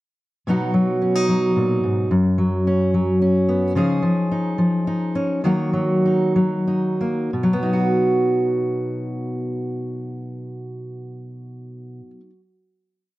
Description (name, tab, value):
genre	indie folk with a building arrangement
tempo	88-110 BPM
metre	3/4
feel	straight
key	B lydian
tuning	A4 = 443 Hz
part	fingerpicked steel-string acoustic guitar	solo	0.5-12.4 s	F#2 to G#4	-18 LUFS	equal	slapback echo
room	moderate booth ambience, RT60 0.2 s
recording	dry, close 1970s-style studio recording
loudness	-18 LUFS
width	side -17 dB against mid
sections	0.5-7.3 breakdown; 7.3-11.4 final chord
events	slowing down 3.7-7.3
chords	0.5 B; 2.1 F#sus4; 3.7 C#add9; 5.4 D#m; 7.3 B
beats	| 0.46 1.01 1.56 | 2.10 2.65 3.20 | 3.75 4.30 4.86 | 5.44 6.04 6.67 | 7.33 8.02 8.70 | 9.39 10.07 10.76